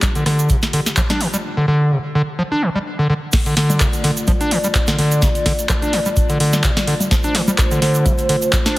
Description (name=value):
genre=acid house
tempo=127 BPM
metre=4/4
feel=swing 55% on 16ths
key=D minor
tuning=A4 = 445 Hz
part: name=dark analog pad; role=sustained chords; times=0.0-8.8 s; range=A3 to D5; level=-24 LUFS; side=equal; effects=chorus, sidechain pumping
part: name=booming analog drum machine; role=drums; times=0.0-8.7 s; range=congas, crash cymbal, handclaps, hi-hat, rim click, snare drum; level=-20 LUFS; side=equal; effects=none
part: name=electronic kick drum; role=drums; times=0.0-8.6 s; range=none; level=-19 LUFS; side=equal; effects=none
part: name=egg shaker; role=percussion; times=0.0-8.7 s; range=none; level=-28 LUFS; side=right 4 dB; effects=none
part: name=overdriven acid bass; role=riff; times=0.2-8.8 s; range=C3 to D4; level=-18 LUFS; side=equal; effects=tape echo
room=moderate plate reverb, RT60 2.4 s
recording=heavily compressed radio sound, multiband compression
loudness=-14 LUFS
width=side -18 dB against mid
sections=0.0-3.3 A section; 3.3-8.8 B section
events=drop 3.3-8.8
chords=0.0 Dm